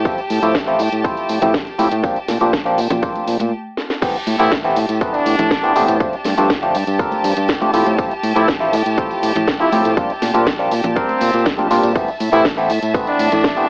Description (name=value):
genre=filtered disco house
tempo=121 BPM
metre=4/4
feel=straight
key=A phrygian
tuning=A4 = 439 Hz
part: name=clav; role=accompaniment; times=0.0-13.7 s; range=E3 to C5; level=-17 LUFS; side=equal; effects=phaser, vintage 12-bit sampler grit, sidechain pumping, low-pass filter, cassette tape
part: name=clear studio violin section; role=sustained chords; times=0.0-13.7 s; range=G4 to A5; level=-24 LUFS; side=equal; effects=sidechain pumping, low-pass filter, cassette tape
part: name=overdriven fingered electric bass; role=bass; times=0.0-13.5 s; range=G1 to Bb2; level=-20 LUFS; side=equal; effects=sidechain pumping, low-pass filter
part: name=electronic kick drum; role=drums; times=0.1-13.5 s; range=none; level=-22 LUFS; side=equal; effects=overdrive, cassette tape
part: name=house drum kit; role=drums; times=0.1-13.7 s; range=crash cymbal, hi-hat, ride cymbal, snare drum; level=-22 LUFS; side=equal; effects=overdrive, sidechain pumping on hats, cassette tape, sidechain pumping on cymbals
part: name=tambourine and congas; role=percussion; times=0.1-13.7 s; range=none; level=-28 LUFS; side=equal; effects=sidechain pumping on perc, low-pass filter on perc
part: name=brilliant horn section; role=melody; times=4.4-13.7 s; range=C4 to E4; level=-20 LUFS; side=equal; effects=vintage 12-bit sampler grit, sidechain pumping, low-pass filter, tape echo
room=light reverb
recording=home recording on cassette, AM radio sound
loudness=-14 LUFS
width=side -33 dB against mid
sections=0.0-4.0 A section; 4.0-13.7 B section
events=filter sweep 0.0-4.0; stop 3.5-4.0; drum fill 3.8; drop 4.0-13.7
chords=0.0 Fmaj7/A; 2.0 Bb6; 4.0 Am9; 6.0 G7sus4; 7.7 Fmaj7/A; 10.0 Bb6; 12.0 Am9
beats=| 0.05 0.55 1.04 1.54 | 2.04 2.53 3.03 3.52 | 4.02 4.52 5.01 5.51 | 6.00 6.50 7.00 7.49 | 7.99 8.48 8.98 9.47 | 9.97 10.47 10.96 11.46 | 11.95 12.45 12.95 13.44